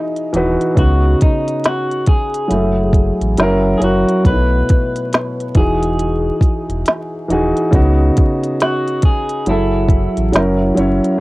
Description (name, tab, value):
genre	lo-fi hip hop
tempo	69 BPM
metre	4/4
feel	swing 62% on 16ths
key	F# dorian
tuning	A4 = 442 Hz
part	electric guitar through a small old amp	melody	0.0-10.7 s	D#4 to B4	-22 LUFS	left 1 dB	cassette tape, plate reverb
part	dark upright piano	accompaniment	0.0-11.2 s	B2 to D#5	-16 LUFS	equal	cassette tape, plate reverb
part	organic electronic drum kit	drums	0.2-11.2 s	hi-hat, kick drum, snare drum	-14 LUFS	equal	vintage 12-bit sampler grit, cassette tape
part	sub bass with octave	bass	0.3-11.0 s	D#1 to C#2	-17 LUFS	equal	transformer saturation
room	moderate booth ambience, RT60 0.2 s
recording	home recording on cassette, vinyl crackle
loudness	-13 LUFS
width	side -20 dB against mid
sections	0.0-11.2 A section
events	break 0.0-0.8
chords	0.0 Emaj9; 0.8 C#9sus4; 2.5 F#m9; 3.4 F#7; 4.2 B9sus4; 5.5 Emaj9; 7.7 C#9sus4; 9.5 F#m9; 10.3 F#7